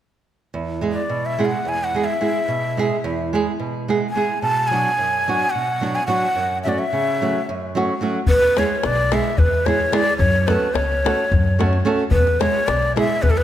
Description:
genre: balkan folk, Balkan wedding band.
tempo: free time.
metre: none.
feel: none.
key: E mixolydian.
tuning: A4 = 439 Hz.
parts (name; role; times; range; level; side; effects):
nylon-string guitar; accompaniment; 0.5-13.1 s; E2 to A4; -22 LUFS; right 3 dB; none.
breathy bright ney; melody; 0.9-13.4 s; A4 to A5; -20 LUFS; left 1 dB; none.
upright bass; bass; 8.3-13.4 s; B1 to F#2; -21 LUFS; equal; none.
davul; percussion; 8.3-13.4 s; none; -22 LUFS; left 3 dB; none.
room: moderate scoring stage reverb, RT60 2.2 s.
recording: none.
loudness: -17 LUFS.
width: side -11 dB against mid.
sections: 0.5-8.3 A section; 8.3-13.4 B section.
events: none.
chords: 0.5 E; 4.4 Bm; 6.3 F#m; 8.3 E; 10.2 F#m; 12.1 E.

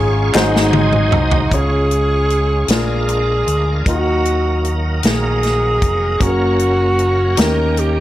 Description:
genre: slow gospel.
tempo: 51 BPM (dotted quarters).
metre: 6/8.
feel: straight.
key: Db major.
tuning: A4 = 440 Hz.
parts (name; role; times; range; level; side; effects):
mellow saxophone section; melody; 0.0-0.7 s; Db4 to Ab4; -22 LUFS; left 2 dB; none.
warm baby grand piano; accompaniment; 0.0-8.0 s; Ab2 to Db5; -22 LUFS; left 1 dB; none.
bright tonewheel organ; sustained chords; 0.0-8.0 s; Eb3 to Ab5; -24 LUFS; right 3 dB; slow rotary speaker, overdrive, chorus vibrato.
fingered electric bass; bass; 0.0-8.0 s; F1 to Eb2; -18 LUFS; equal; none.
group handclap; percussion; 0.3-0.7 s; none; -22 LUFS; left 2 dB; none.
breathy alto saxophone; melody; 0.4-8.0 s; Eb4 to Bb4; -18 LUFS; equal; none.
natural country drum kit; drums; 0.4-8.0 s; hi-hat, kick drum, snare drum, toms; -18 LUFS; equal; none.
room: light reverb, small room ambience.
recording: none.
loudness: -13 LUFS.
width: side -14 dB against mid.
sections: 0.0-1.5 A section; 1.5-8.0 B section.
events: drum fill 0.3-1.5; tonewheel organ fill 0.3-1.5.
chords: 0.3 Ab7; 1.5 Db; 2.7 Bb7; 3.9 Ebm; 6.2 Gb; 7.4 Eb7.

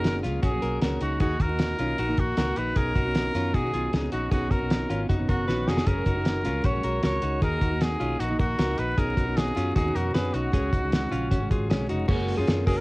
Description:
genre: jangly indie pop.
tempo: 154 BPM.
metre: 4/4.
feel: straight.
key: F# major.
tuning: A4 = 442 Hz.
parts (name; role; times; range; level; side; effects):
clear trumpet; melody; 0.0-12.8 s; F#4 to C#5; -30 LUFS; equal; cassette tape.
fingerpicked plugged-in steel-string acoustic guitar; accompaniment; 0.0-12.8 s; B2 to A#4; -32 LUFS; right 2 dB; cassette tape.
direct-recorded clean electric guitar; arpeggios; 0.0-12.8 s; C#4 to B4; -31 LUFS; left 2 dB; cassette tape.
vintage muted fingered electric bass; bass; 0.0-12.8 s; E#1 to B2; -30 LUFS; equal; tube saturation.
cloth-damped thuddy drum kit; drums; 0.0-12.8 s; crash cymbal, hi-hat, kick drum, snare drum; -26 LUFS; equal; vintage 12-bit sampler grit, cassette tape.
soft electric-piano-like synth keys; accompaniment; 12.1-12.8 s; A#3 to G#4; -32 LUFS; right 1 dB; chorus, tremolo, cassette tape.
room: light reverb.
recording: home recording on cassette, vinyl crackle.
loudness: -23 LUFS.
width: side -22 dB against mid.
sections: 0.0-12.1 A section.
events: drum fill 5.5-5.9.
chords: 0.0 F#add9; 1.2 D#m; 2.8 Badd9; 5.9 F#add9; 7.4 D#m; 9.0 Badd9; 10.5 C#sus4; 12.1 F#add9.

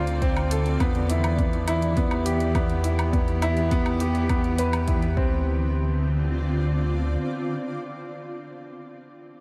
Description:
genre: piano and strings electronica.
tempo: 103 BPM.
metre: 4/4.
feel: straight.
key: D dorian.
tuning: A4 = 439 Hz.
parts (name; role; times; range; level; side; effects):
granular cloud pad; sustained chords; 0.0-8.6 s; D3 to D5; -32 LUFS; equal; built-in reverb.
warm baby grand piano; riff; 0.0-9.4 s; B3 to B4; -30 LUFS; equal; analog delay.
dark detuned saw bass; bass; 0.0-7.2 s; D2 to E2; -28 LUFS; equal; sidechain pumping.
electronic hi-hat and woodblock; drums; 0.1-5.1 s; none; -39 LUFS; equal; none.
electronic kick drum; drums; 0.2-5.3 s; none; -28 LUFS; equal; none.
room: moderate huge ambient reverb, RT60 7.6 s.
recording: dreamy mix soaked in reverb.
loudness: -24 LUFS.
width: mono.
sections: 0.0-5.5 A section; 5.5-7.8 B section.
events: drop 0.0-5.5.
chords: 0.0 Dm7; 0.8 Em7; 5.2 Csus2/D; 5.5 Dm7.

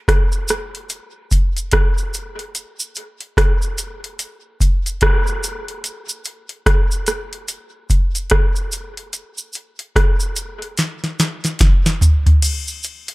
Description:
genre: reggae.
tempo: 73 BPM.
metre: 4/4.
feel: swing 61% on 16ths.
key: none.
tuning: none.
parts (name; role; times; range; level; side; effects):
booming analog drum machine; drums; 0.1-13.1 s; crash cymbal, hi-hat, kick drum, rim click, snare drum, toms; -16 LUFS; equal; none.
cabasa; percussion; 0.3-13.1 s; none; -26 LUFS; right 2 dB; high-pass filter on perc.
room: light reverb, digital ambience.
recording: none.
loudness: -16 LUFS.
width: side -21 dB against mid.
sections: 0.0-12.4 A section.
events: drum fill 10.8-12.4.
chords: none.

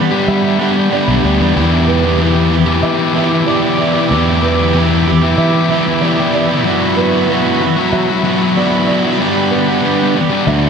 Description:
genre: post-rock.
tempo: 94 BPM.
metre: 4/4.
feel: straight.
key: E minor.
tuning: A4 = 440 Hz.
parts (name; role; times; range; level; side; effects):
warm analog pad; sustained chords; 0.0-10.7 s; F#4 to D6; -21 LUFS; left 1 dB; chorus.
distorted electric guitar; riff; 0.0-10.7 s; D3 to G4; -17 LUFS; right 8 dB; distortion.
sustaining fretless electric bass; bass; 0.0-10.7 s; B1 to G3; -18 LUFS; equal; none.
thick fuzz guitar; riff; 0.1-10.7 s; D3 to G4; -16 LUFS; left 8 dB; distortion.
felt-muted upright piano; arpeggios; 0.3-10.7 s; B4 to E5; -21 LUFS; right 4 dB; lush chorus, diffuse ambient delay.
room: wet cathedral reverb, RT60 4.7 s.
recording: dreamy mix soaked in reverb.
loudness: -11 LUFS.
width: side -6 dB against mid.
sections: 0.0-10.7 A section.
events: none.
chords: 0.0 Gmaj7; 1.6 Em7; 6.7 Bsus4/F#; 9.2 Gmaj7.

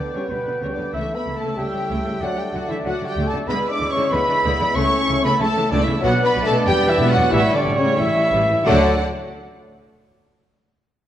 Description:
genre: quick classical-period movement for symphony orchestra.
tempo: 94 BPM.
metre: 2/4.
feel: straight.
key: D major.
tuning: A4 = 438 Hz.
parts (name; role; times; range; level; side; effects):
rich chamber violin section; melody; 0.0-9.0 s; B4 to D6; -28 LUFS; left 3 dB; none.
clear oboe; second line; 0.0-8.9 s; C#5 to G5; -30 LUFS; equal; none.
dark clarinet; second line; 0.0-8.9 s; B3 to D5; -28 LUFS; left 2 dB; none.
mellow hollow silver concert flute; second line; 0.0-9.0 s; B4 to D6; -27 LUFS; left 1 dB; none.
rich chamber violin section; second line; 0.0-9.0 s; B3 to D5; -30 LUFS; left 2 dB; none.
mellow bassoon; accompaniment; 0.0-9.0 s; G3 to B3; -28 LUFS; right 2 dB; none.
rich chamber viola section; accompaniment; 0.0-9.0 s; D3 to E4; -27 LUFS; right 1 dB; none.
mellow French horn section; sustained chords; 0.0-8.9 s; B2 to D4; -26 LUFS; left 3 dB; none.
mellow trumpet section; stabs; 0.0-8.9 s; A4 to D6; -25 LUFS; right 2 dB; none.
clear chamber double bass section; bass; 0.0-9.0 s; E1 to D2; -26 LUFS; right 2 dB; none.
clear symphonic cello section; bass; 0.0-9.0 s; E2 to D3; -27 LUFS; right 1 dB; none.
room: wet recital hall reverb, RT60 1.8 s.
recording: worn, warbling old tape, cassette tape, warbly pitch drift.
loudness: -17 LUFS.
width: side -11 dB against mid.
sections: 0.0-8.7 A section; 8.7-10.0 B section.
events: none.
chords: 0.0 G; 0.9 A7/C#; 2.2 D; 3.5 E7/D; 4.8 A/C#; 6.0 Bm; 6.7 Em7; 7.3 A7; 8.7 D5.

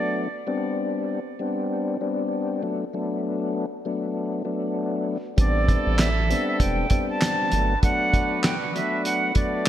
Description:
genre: hip hop, boom-bap hip-hop.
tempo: 98 BPM.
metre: 4/4.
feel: swing 58% on 16ths.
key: unclear.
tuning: A4 = 440 Hz.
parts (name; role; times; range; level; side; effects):
breathy bright jazz flute; melody; 0.0-0.4, 5.4-9.7 s; D5 to A5; -26 LUFS; right 2 dB; high-pass filter, low-pass filter, ping-pong delay.
mellow tonewheel organ; accompaniment; 0.0-9.7 s; F#3 to D4; -26 LUFS; left 2 dB; overdrive, chorus vibrato, slow rotary speaker, cassette tape, high-pass filter, low-pass filter.
warm horn section; stabs; 5.4-9.7 s; D4 to B4; -32 LUFS; right 5 dB; high-pass filter, low-pass filter, ping-pong delay.
soft dub sub bass; bass; 5.4-7.8 s; E1 to A1; -24 LUFS; right 1 dB; none.
cloth-damped thuddy drum kit; drums; 5.4-9.7 s; handclaps, hi-hat, kick drum, snare drum; -22 LUFS; right 1 dB; gated reverb.
room: moderate plate reverb, RT60 2.6 s.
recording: bright 1980s-style digital production.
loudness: -22 LUFS.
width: side -11 dB against mid.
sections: 0.0-9.7 A section.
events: none.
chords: 0.5 Gadd11; 2.6 Bm7/F#; 5.4 Am11; 7.5 Gmaj9 (rootless).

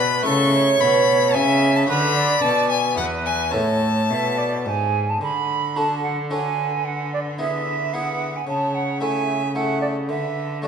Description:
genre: classical, baroque-style sonata movement with continuo.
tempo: 111 BPM.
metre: 3/4.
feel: straight.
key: A major.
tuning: A4 = 439 Hz.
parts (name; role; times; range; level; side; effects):
rich violin; melody; 0.0-10.7 s; A4 to C#6; -24 LUFS; left 6 dB; none.
silver concert flute; second line; 0.0-10.7 s; A4 to B5; -22 LUFS; right 5 dB; none.
harpsichord; accompaniment; 0.0-10.7 s; E2 to B4; -28 LUFS; left 2 dB; none.
rich cello; bass; 0.0-10.7 s; E2 to D3; -24 LUFS; equal; none.
room: wet recital hall reverb, RT60 1.7 s.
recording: none.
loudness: -18 LUFS.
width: side -7 dB against mid.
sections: 0.0-5.2 A section; 5.2-10.7 A section.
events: none.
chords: 0.3 A; 1.9 Bm/D; 3.0 E; 3.5 A; 5.2 D; 6.8 E7/D; 8.5 A/C#; 10.1 N.C..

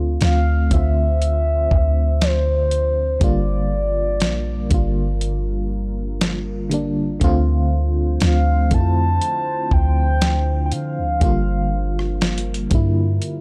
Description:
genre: contemporary R&B.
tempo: 60 BPM.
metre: 4/4.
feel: swing 54% on 16ths.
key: D minor.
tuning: A4 = 440 Hz.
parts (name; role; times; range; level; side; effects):
FM electric piano with tremolo; accompaniment; 0.0-13.4 s; D3 to F4; -27 LUFS; equal; none.
deep dark ambient pad; sustained chords; 0.5-13.4 s; D3 to E5; -35 LUFS; equal; chorus, built-in reverb.
clean 808-style bass; bass; 0.0-13.2 s; G1 to D3; -22 LUFS; equal; none.
mellow horn-like synth lead; melody; 0.2-12.2 s; C5 to A5; -26 LUFS; equal; chorus, delay.
dusty soul sampler-style drum kit; drums; 0.2-13.4 s; hi-hat, kick drum, rim click, snare drum; -22 LUFS; equal; none.
room: little or no reverb.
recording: dark, warm production.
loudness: -19 LUFS.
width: mono.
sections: 0.0-13.4 A section.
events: none.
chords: 0.0 Dm7; 3.2 Gm7; 7.2 Dm7; 11.2 Gm7.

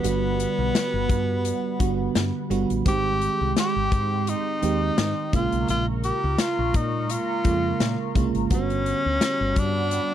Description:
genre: 1980s-style pop.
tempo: 85 BPM.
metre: 4/4.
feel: swing 55% on 16ths.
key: unclear.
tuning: A4 = 435 Hz.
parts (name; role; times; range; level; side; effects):
clear tenor saxophone; melody; 0.0-10.1 s; B3 to G4; -26 LUFS; left 1 dB; none.
FM electric piano; accompaniment; 0.0-10.1 s; Db3 to G4; -28 LUFS; right 7 dB; chorus.
phased analog pad; sustained chords; 0.0-10.1 s; G3 to Db6; -32 LUFS; equal; phaser, chorus.
woody fretless electric bass; bass; 0.0-10.0 s; G1 to Bb2; -27 LUFS; left 1 dB; ensemble chorus.
big rock drum kit; drums; 0.0-10.1 s; hi-hat, kick drum, snare drum; -26 LUFS; left 2 dB; none.
room: little or no reverb.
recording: dry, close 1970s-style studio recording.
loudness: -21 LUFS.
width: side -10 dB against mid.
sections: 0.0-10.1 A section.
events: none.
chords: 0.0 Gmaj7; 2.9 Abmaj7; 5.3 Bbm7; 8.5 Gmaj7.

